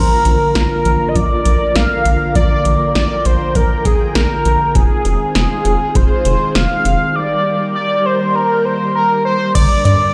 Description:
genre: synth-pop.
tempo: 100 BPM.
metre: 4/4.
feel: straight.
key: Bb mixolydian.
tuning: A4 = 440 Hz.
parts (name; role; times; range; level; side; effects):
octave-doubled lead; melody; 0.0-10.1 s; Ab4 to F5; -18 LUFS; equal; chorus, phaser, tape echo.
ensemble organ-string; sustained chords; 0.0-10.1 s; D3 to G5; -23 LUFS; equal; ensemble chorus.
rubbery square bass; bass; 0.0-10.0 s; F1 to G2; -18 LUFS; equal; none.
electro analog drum machine; drums; 0.3-10.0 s; crash cymbal, hi-hat, kick drum, snare drum; -19 LUFS; equal; none.
room: moderate lush hall reverb, RT60 2.2 s.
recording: played on a big sound system in a bare room, large studio reverb.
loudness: -15 LUFS.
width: mono.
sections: 0.0-9.6 A section.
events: none.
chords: 0.0 Bb; 4.8 Fm7; 7.2 Eb; 9.6 Gm.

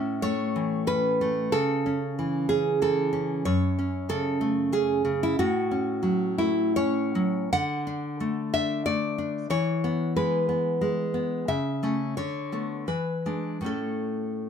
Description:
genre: romantic piece for solo classical guitar.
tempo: 75-96 BPM.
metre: 3/4.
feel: rubato.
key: A major.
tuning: A4 = 440 Hz.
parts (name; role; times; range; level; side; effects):
nylon-string guitar; solo; 0.0-14.5 s; F#2 to F#5; -24 LUFS; equal; none.
room: moderate studio reverb, RT60 0.7 s.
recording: band playing live in one room.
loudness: -24 LUFS.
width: side -7 dB against mid.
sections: 0.0-14.5 A section.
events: none.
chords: 0.0 A; 1.5 A/C#; 3.5 F#m; 5.4 F#m/A; 7.5 D; 9.5 E; 11.5 A/C#; 12.2 Bm7/D; 12.9 E7; 13.6 A.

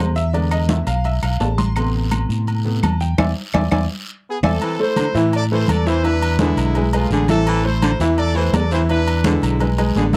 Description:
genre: latin, salsa.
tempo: 168 BPM.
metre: 4/4.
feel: straight.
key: A harmonic minor.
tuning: A4 = 440 Hz.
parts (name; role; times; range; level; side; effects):
clear baby grand piano; accompaniment; 0.0-10.2 s; C3 to C6; -25 LUFS; equal; none.
fingered electric bass; bass; 0.0-10.2 s; A1 to A2; -22 LUFS; equal; none.
congas; percussion; 0.2-10.2 s; none; -26 LUFS; equal; none.
guiro; percussion; 0.2-10.2 s; none; -39 LUFS; equal; none.
agogo bells and timbales; percussion; 0.3-10.2 s; none; -30 LUFS; equal; none.
claves; percussion; 0.5-4.5 s; none; -34 LUFS; equal; none.
brilliant horn section; melody; 4.3-10.2 s; G#3 to D5; -26 LUFS; equal; none.
breathy baritone saxophone; second line; 4.6-10.2 s; D3 to E3; -25 LUFS; equal; none.
room: light reverb.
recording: dry, close 1970s-style studio recording.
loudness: -18 LUFS.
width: mono.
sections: 0.0-4.6 A section; 4.6-10.2 B section.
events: grand piano solo 0.0-4.6; band accent 3.2-4.6; drum fill 3.9-4.6.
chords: 0.3 E7; 1.8 Amadd9; 3.2 E7; 4.6 Amadd9; 6.0 E7; 7.5 Amadd9; 8.9 E7.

